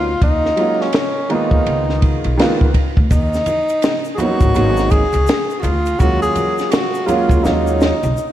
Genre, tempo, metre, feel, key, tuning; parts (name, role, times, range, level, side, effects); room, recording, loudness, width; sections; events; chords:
hip hop, jazz-hop; 83 BPM; 4/4; swing 62% on 16ths; Eb minor; A4 = 440 Hz
breathy tenor saxophone; melody; 0.0-8.3 s; Db4 to Ab4; -19 LUFS; equal; diffuse ambient delay
warm upright piano; accompaniment; 0.0-7.9 s; Eb3 to F4; -20 LUFS; right 2 dB; lush chorus
upright bass; bass; 0.0-8.1 s; Ab1 to Eb2; -20 LUFS; equal
compact cocktail drum kit; drums; 0.2-8.0 s; hi-hat, kick drum, ride cymbal, snare drum; -18 LUFS; equal
egg shaker and congas; percussion; 3.1-8.3 s; -29 LUFS; left 1 dB
moderate lush hall reverb, RT60 2.1 s; dreamy mix soaked in reverb, vinyl crackle; -13 LUFS; side -12 dB against mid
0.0-8.3 A section
drum fill 7.4-8.3
0.2 Ebm11; 1.7 Db13; 3.1 Ebm7; 4.6 Abm11; 6.0 Ebm11